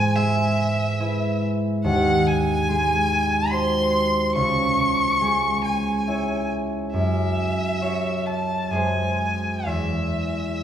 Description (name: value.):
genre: classical, romantic duo for violin and harp.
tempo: 61-73 BPM.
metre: 3/4.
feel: rubato.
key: C# minor.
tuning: A4 = 440 Hz.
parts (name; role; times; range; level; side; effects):
rich violin; melody; 0.0-10.6 s; E5 to C#6; -24 LUFS; left 1 dB; none.
concert harp; accompaniment; 0.0-10.6 s; C#2 to C#5; -22 LUFS; right 1 dB; none.
room: wet recital hall reverb, RT60 1.7 s.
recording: heard from further back in the room.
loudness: -20 LUFS.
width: side -9 dB against mid.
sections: 0.0-10.6 A section.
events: none.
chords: 0.0 E/G#; 1.8 G#7/D#; 4.4 C#m; 6.9 F#5; 8.7 G#7(no3)/F#; 9.7 C#m/E (rootless).